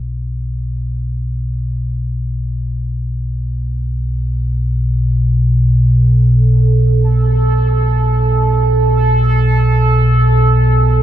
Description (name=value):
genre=dark ambient drone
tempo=free time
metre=none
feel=none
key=unclear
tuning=A4 = 435 Hz
part: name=deep rumbling drone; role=drone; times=0.0-11.0 s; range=B1 to B2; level=-12 LUFS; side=equal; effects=built-in reverb, phaser, lush chorus
part: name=bubbling stepped-filter texture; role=texture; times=6.5-11.0 s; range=A4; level=-17 LUFS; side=right 5 dB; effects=chorus, built-in reverb
room=wet huge ambient reverb, RT60 7.7 s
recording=none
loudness=-12 LUFS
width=side -11 dB against mid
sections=0.0-11.0 A section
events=filter sweep on synth drone 0.0-11.0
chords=0.0 Asus2/B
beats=free time